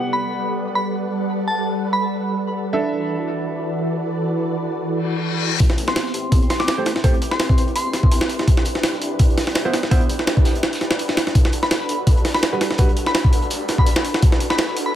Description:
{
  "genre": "drum and bass, jungle",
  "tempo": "167 BPM",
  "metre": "4/4",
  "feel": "swing 54% on 16ths",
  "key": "A dorian",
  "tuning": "A4 = 440 Hz",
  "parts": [
    { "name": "soft string machine", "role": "sustained chords", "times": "0.0-15.0 s", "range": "E3 to F#5", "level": "-24 LUFS", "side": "equal", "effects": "ensemble chorus, vintage 12-bit sampler grit" },
    { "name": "clear baby grand piano", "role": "stabs", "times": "0.0-7.1, 9.7-10.0, 12.5-12.9 s", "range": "G3 to F#5", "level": "-26 LUFS", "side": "right 3 dB", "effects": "low-pass filter, dub echo" },
    { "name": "glassy synth bell", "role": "melody", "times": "0.1-2.3, 5.9-8.1, 11.6-14.9 s", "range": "A5 to D6", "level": "-26 LUFS", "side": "left 1 dB", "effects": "chorus, tremolo, vintage 12-bit sampler grit, low-pass filter, dub echo" },
    { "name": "reverse cymbal and riser", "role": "sound effects", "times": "5.0-5.6, 12.7-15.0 s", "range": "none", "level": "-29 LUFS", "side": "left 6 dB", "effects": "none" },
    { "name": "detuned saw bass", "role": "bass", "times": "5.6-15.0 s", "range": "E1 to G2", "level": "-34 LUFS", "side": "equal", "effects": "none" },
    { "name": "crunchy breakbeat drum kit", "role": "drums", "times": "5.6-14.9 s", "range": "hi-hat, snare drum", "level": "-35 LUFS", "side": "right 2 dB", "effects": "none" },
    { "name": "jungle sampler-style drum kit", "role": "drums", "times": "5.6-14.9 s", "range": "hi-hat, kick drum, snare drum", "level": "-17 LUFS", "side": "equal", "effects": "small room ambience" }
  ],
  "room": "light reverb, studio reverb",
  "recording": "none",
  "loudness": "-17 LUFS",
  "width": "side -11 dB against mid",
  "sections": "0.0-5.6 A section; 5.6-15.0 B section",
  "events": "reverse cymbal 5.0-5.6; build-up 5.6-15.0",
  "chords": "0.0 Gmaj7; 2.7 E7sus4; 5.6 Am7; 8.5 Cmaj7; 11.4 Gmaj7; 14.2 E7sus4",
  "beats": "0.21 0.57 0.93 | 1.29 1.65 2.01 2.37 | 2.73 3.09 3.45 3.81 | 4.17 4.53 4.88 5.24 | 5.60 5.96 6.32 6.68 | 7.04 7.40 7.76 8.12 | 8.48 8.84 9.20 9.56 | 9.91 10.27 10.63 10.99 | 11.35 11.71 12.07 12.43 | 12.79 13.15 13.51 13.87 | 14.23 14.59 14.95"
}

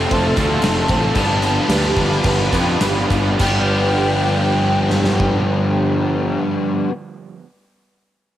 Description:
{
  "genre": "rock, shoegaze and dream pop",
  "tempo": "100-117 BPM",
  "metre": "4/4",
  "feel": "straight",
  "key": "G mixolydian",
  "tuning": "A4 = 440 Hz",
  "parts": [
    { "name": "pure sine lead", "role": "melody", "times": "0.0-6.4 s", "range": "G5 to A5", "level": "-25 LUFS", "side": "equal", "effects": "chorus, cassette tape, analog delay" },
    { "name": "phased analog pad", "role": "sustained chords", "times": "0.0-6.4 s", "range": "D4 to E6", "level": "-25 LUFS", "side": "equal", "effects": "phaser, chorus, cassette tape" },
    { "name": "picked twelve-string acoustic guitar", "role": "arpeggios", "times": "0.0-4.2 s", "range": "G4 to C5", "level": "-29 LUFS", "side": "right 5 dB", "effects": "none" },
    { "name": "biting overdriven guitar", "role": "riff", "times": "0.0-6.9 s", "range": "G2 to B4", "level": "-25 LUFS", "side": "left 6 dB", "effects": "ensemble chorus, cassette tape" },
    { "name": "crunchy overdriven guitar", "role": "riff", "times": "0.0-6.9 s", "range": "F2 to D4", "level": "-24 LUFS", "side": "right 6 dB", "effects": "reverse reverb, cassette tape" },
    { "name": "distorted electric guitar", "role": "riff", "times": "0.0-6.9 s", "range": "F2 to G4", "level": "-22 LUFS", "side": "left 1 dB", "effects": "overdrive, cassette tape" },
    { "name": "fuzz picked electric bass", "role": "bass", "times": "0.0-6.4 s", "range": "F1 to F2", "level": "-20 LUFS", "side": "equal", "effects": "overdrive" },
    { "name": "gated 80s drum kit", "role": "drums", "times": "0.1-5.3 s", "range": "crash cymbal, kick drum, snare drum", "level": "-22 LUFS", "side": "equal", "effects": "cassette tape" },
    { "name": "tambourine", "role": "percussion", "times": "0.1-3.7 s", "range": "none", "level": "-36 LUFS", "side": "left 7 dB", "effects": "none" }
  ],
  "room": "light reverb, small room ambience",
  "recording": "home recording on cassette",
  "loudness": "-15 LUFS",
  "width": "side -12 dB against mid",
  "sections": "0.0-3.4 A section; 3.4-8.2 B section",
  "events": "slowing down 0.0-3.4",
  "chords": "0.0 Fmaj7; 1.2 G7",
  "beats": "0.10 0.62 | 1.15 1.69 2.25 2.81 | 3.40 4.00 4.60 5.20 | 5.80 6.40"
}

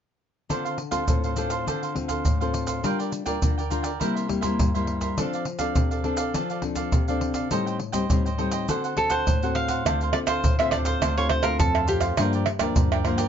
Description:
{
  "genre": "samba and choro",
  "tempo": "103 BPM",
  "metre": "4/4",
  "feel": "straight",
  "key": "D minor",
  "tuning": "A4 = 440 Hz",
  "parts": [
    { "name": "cavaquinho", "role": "accompaniment", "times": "0.5-13.3 s", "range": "D4 to G5", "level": "-30 LUFS", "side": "right 6 dB", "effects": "none" },
    { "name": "nylon-string guitar", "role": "accompaniment", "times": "0.5-13.3 s", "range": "G2 to Bb4", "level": "-28 LUFS", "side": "left 5 dB", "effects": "none" },
    { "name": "maracas, surdo, pandeiro and tamborim", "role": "percussion", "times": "0.5-13.3 s", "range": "none", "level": "-25 LUFS", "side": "right 1 dB", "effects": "none" },
    { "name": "cavaquinho", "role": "melody", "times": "9.0-13.0 s", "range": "G4 to F5", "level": "-27 LUFS", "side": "right 2 dB", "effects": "none" },
    { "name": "bell-like tine electric piano", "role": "bass", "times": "9.9-13.3 s", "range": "D2 to G2", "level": "-27 LUFS", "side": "equal", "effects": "none" }
  ],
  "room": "moderate small room ambience, RT60 0.5 s",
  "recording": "nothing above 7.5 kHz",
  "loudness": "-22 LUFS",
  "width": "side -8 dB against mid",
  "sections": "0.5-9.9 A section; 9.9-13.3 B section",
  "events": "none",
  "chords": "0.5 Dm7; 2.8 Gm7; 4.0 C7; 5.2 F6; 7.5 Am7b5; 8.7 D7; 9.9 Dm7; 12.2 Gm7",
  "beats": "| 0.50 1.09 1.67 2.26 | 2.84 3.42 4.01 4.59 | 5.18 5.76 6.35 6.93 | 7.52 8.10 8.69 9.27 | 9.85 10.44 11.02 11.61 | 12.19 12.77"
}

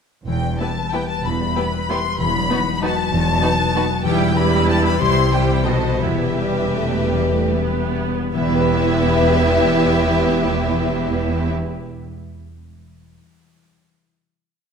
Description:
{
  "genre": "classical, orchestral ballroom waltz",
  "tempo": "142-206 BPM",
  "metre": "3/4",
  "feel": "rubato",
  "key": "E minor",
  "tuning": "A4 = 440 Hz",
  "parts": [
    { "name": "rich studio violin section", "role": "melody", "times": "0.3-11.5 s", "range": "D#5 to C6", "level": "-23 LUFS", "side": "left 4 dB", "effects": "none" },
    { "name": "concert harp", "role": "arpeggios", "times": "0.3-12.3 s", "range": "B2 to E5", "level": "-24 LUFS", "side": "left 8 dB", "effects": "none" },
    { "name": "rich studio cello section", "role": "bass", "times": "0.3-11.5 s", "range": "E2 to C3", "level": "-24 LUFS", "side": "right 3 dB", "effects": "none" },
    { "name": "rich studio double bass section", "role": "bass", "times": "0.3-11.5 s", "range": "E1 to C2", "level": "-25 LUFS", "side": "right 2 dB", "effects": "none" },
    { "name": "rich studio violin section", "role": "second line", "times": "0.6-11.5 s", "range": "F#4 to C5", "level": "-24 LUFS", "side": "left 2 dB", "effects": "none" },
    { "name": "rich studio viola section", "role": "accompaniment", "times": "0.6-11.5 s", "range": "G3 to F#4", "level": "-23 LUFS", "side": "right 5 dB", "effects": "none" }
  ],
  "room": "wet scoring stage reverb, RT60 1.7 s",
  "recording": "none",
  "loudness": "-16 LUFS",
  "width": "side -6 dB against mid",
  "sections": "0.3-8.3 A section; 8.3-10.7 final chord",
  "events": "slowing down 5.5-8.3",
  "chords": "0.3 Em; 2.2 B7/E; 4.1 Em; 5.0 C; 5.7 B7b9; 6.0 Em",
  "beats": "| 0.28 0.60 0.93 | 1.24 1.56 1.89 | 2.19 2.50 2.82 | 3.12 3.43 3.75 | 4.06 4.38 4.71 | 5.02 5.33 5.67 | 6.01 6.37 6.76 | 7.13 7.52 7.94 | 8.34 8.73 9.15 | 9.53 9.93 10.35"
}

